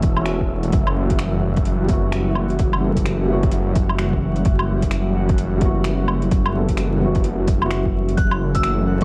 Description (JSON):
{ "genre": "future garage", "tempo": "129 BPM", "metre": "4/4", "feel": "swing 61% on 16ths", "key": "unclear", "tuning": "A4 = 440 Hz", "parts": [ { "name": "felt-muted upright piano", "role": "accompaniment", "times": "0.0-8.2 s", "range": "G3 to A4", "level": "-30 LUFS", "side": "equal", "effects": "sidechain pumping, tape echo" }, { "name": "airy breathy pad", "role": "sustained chords", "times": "0.0-9.0 s", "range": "E3 to F#4", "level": "-28 LUFS", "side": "equal", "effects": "chorus, phaser, sidechain pumping" }, { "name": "swelling detuned saw bass", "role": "bass", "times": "0.0-9.0 s", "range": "E1 to F#1", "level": "-23 LUFS", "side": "equal", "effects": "sidechain pumping" }, { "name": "deep house drum kit", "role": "drums", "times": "0.0-9.0 s", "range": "finger snaps, hi-hat, woodblock", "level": "-30 LUFS", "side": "equal", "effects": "overdrive, vintage 12-bit sampler grit, studio reverb" }, { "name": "electronic kick drum", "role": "drums", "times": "0.0-9.0 s", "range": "none", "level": "-23 LUFS", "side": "equal", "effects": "overdrive, vintage 12-bit sampler grit, studio reverb" }, { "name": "wind-like tuned noise texture", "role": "texture", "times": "0.0-8.2 s", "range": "E5", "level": "-39 LUFS", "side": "equal", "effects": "built-in reverb" }, { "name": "soft synth bell", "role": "melody", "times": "8.2-8.8 s", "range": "E6 to F#6", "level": "-27 LUFS", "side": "equal", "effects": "chorus, phaser, tape echo" } ], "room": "light reverb", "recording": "dark, warm production, vinyl crackle", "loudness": "-19 LUFS", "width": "mono", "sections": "0.0-8.2 A section", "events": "none", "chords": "0.0 F#m7; 0.7 Emadd9/F#; 8.2 F#m7" }